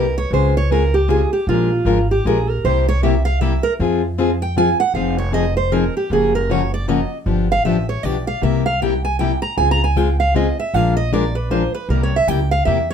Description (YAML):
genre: acoustic string swing (jazz manouche)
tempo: 156 BPM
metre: 3/4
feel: swing 61% on 8ths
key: F minor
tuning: A4 = 440 Hz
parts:
  - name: picked steel-string acoustic guitar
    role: melody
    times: 0.0-12.9 s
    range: F4 to Bb5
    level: -20 LUFS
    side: right 3 dB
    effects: none
  - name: picked plugged-in steel-string acoustic guitar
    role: accompaniment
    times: 0.0-12.8 s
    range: C3 to Bb4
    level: -20 LUFS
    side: left 5 dB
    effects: none
  - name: upright bass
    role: bass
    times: 0.0-12.9 s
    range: F1 to F2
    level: -20 LUFS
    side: right 1 dB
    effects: none
room: light reverb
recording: none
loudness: -15 LUFS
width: side -8 dB against mid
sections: 0.0-5.0 A section; 5.0-12.9 A section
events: steel-string acoustic guitar solo 0.0-12.9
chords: 0.3 Dbmaj7; 1.5 Bb7; 2.6 C7; 3.8 Fm; 5.0 Fm7; 6.1 Gbmaj7; 7.3 G7; 8.4 C7; 9.6 Dbmaj7; 10.7 Bb7; 11.9 C7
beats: | 0.33 0.71 1.10 | 1.49 1.87 2.26 | 2.64 3.03 3.41 | 3.80 4.18 4.57 | 4.95 5.34 5.72 | 6.11 6.50 6.88 | 7.27 7.65 8.04 | 8.42 8.81 9.19 | 9.58 9.96 10.35 | 10.74 11.12 11.51 | 11.89 12.28 12.66